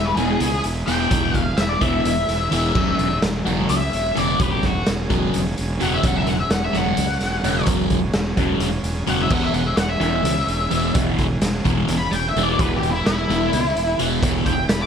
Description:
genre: psychedelic rock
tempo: 256 BPM (eighths)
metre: 7/8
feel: straight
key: E major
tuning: A4 = 438 Hz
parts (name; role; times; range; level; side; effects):
- octave-fuzz lead guitar; melody; 0.0-14.9 s; E4 to D6; -24 LUFS; left 2 dB; wah, distortion, slapback echo
- combo organ; sustained chords; 0.0-14.9 s; E3 to G#4; -32 LUFS; right 6 dB; spring reverb
- fuzz fingered electric bass; bass; 0.0-14.9 s; E1 to C#2; -25 LUFS; equal; overdrive
- fuzz guitar; riff; 0.2-14.5 s; E2 to F#3; -22 LUFS; equal; distortion, phaser
- raw garage drum kit; drums; 0.2-14.8 s; crash cymbal, hi-hat, kick drum, snare drum; -23 LUFS; equal; none
room: light reverb, small room ambience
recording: none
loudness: -18 LUFS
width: side -7 dB against mid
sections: 0.0-14.9 A section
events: lead electric guitar solo 0.0-14.9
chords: 0.0 E; 2.8 F#sus2/E; 9.3 E

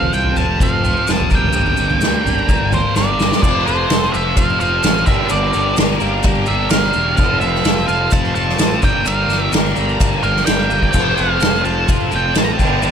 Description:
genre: psychedelic rock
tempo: 128 BPM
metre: 4/4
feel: straight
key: unclear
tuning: A4 = 440 Hz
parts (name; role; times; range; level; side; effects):
- octave-fuzz lead guitar; melody; 0.0-12.9 s; C5 to Bb5; -20 LUFS; right 3 dB; distortion, digital delay
- pedal harmonium; sustained chords; 0.0-12.9 s; C4 to Bb5; -28 LUFS; right 9 dB; none
- biting overdriven guitar; riff; 0.0-12.9 s; G2 to Bb4; -20 LUFS; left 2 dB; flanger
- fuzz picked electric bass; bass; 0.0-12.9 s; E1 to D2; -21 LUFS; equal; overdrive
- soft-mallet drum kit; drums; 0.0-12.7 s; crash cymbal, kick drum, ride cymbal, snare drum, toms; -17 LUFS; equal; none
- maracas; percussion; 0.1-12.9 s; none; -34 LUFS; left 8 dB; none
room: small room ambience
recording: none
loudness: -13 LUFS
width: side -8 dB against mid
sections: 0.0-3.4 A section; 3.4-12.9 B section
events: drum fill 3.0-3.4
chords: 0.0 F; 1.3 Gm; 3.4 F; 5.1 Gm; 7.2 F; 8.8 Gm; 10.9 F

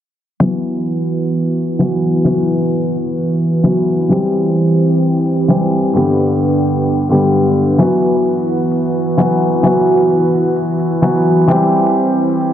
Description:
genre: EDM, festival progressive house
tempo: 130 BPM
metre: 4/4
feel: straight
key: E minor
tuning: A4 = 440 Hz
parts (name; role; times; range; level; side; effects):
- felt-muted upright piano; accompaniment; 0.4-12.5 s; G2 to G4; -14 LUFS; left 1 dB; dub echo
- lush unison pad; sustained chords; 0.4-12.5 s; D3 to G4; -17 LUFS; right 2 dB; chorus
- electronic hi-hat; drums; 0.4-12.5 s; none; -55 LUFS; equal; none
room: light reverb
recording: low-pass filter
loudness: -12 LUFS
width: side -10 dB against mid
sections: 0.4-12.5 A section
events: none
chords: 0.4 Esus2; 4.1 C/E; 5.9 G; 7.8 Esus2; 11.5 C/E

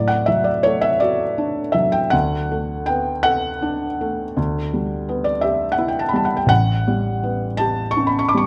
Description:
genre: classical, romantic nocturne for solo piano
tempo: 51-58 BPM (dotted quarters)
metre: 12/8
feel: rubato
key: D major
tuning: A4 = 442 Hz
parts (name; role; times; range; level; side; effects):
- felt-muted upright piano; solo; 0.0-8.5 s; A1 to D6; -20 LUFS; equal; none
room: moderate recital hall reverb, RT60 1.5 s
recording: close, detailed microphones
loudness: -20 LUFS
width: mono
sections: 0.0-8.5 A section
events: none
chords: 0.0 D; 2.1 Bm7/D; 4.4 Em7/D; 6.5 A13

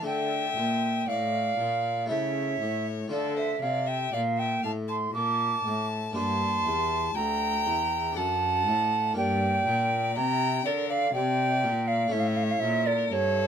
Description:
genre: classical, baroque-style sonata movement with continuo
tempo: 60 BPM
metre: 3/4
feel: rubato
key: D minor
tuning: A4 = 436 Hz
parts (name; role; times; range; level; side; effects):
- clear violin; melody; 0.0-13.5 s; A4 to A5; -33 LUFS; left 8 dB; none
- concert flute; second line; 0.0-13.5 s; C#5 to D6; -27 LUFS; right 3 dB; none
- harpsichord; accompaniment; 0.0-13.5 s; D2 to Bb4; -33 LUFS; left 2 dB; none
- rich cello; bass; 0.0-13.5 s; D2 to D3; -32 LUFS; equal; none
room: light reverb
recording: minimal, uncompressed stereo recording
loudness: -24 LUFS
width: side -8 dB against mid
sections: 0.1-13.5 A section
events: none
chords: 0.1 Dm; 2.1 A/C#; 3.1 Dm; 6.2 Gm; 8.2 D/F#; 9.2 Gm; 12.1 A

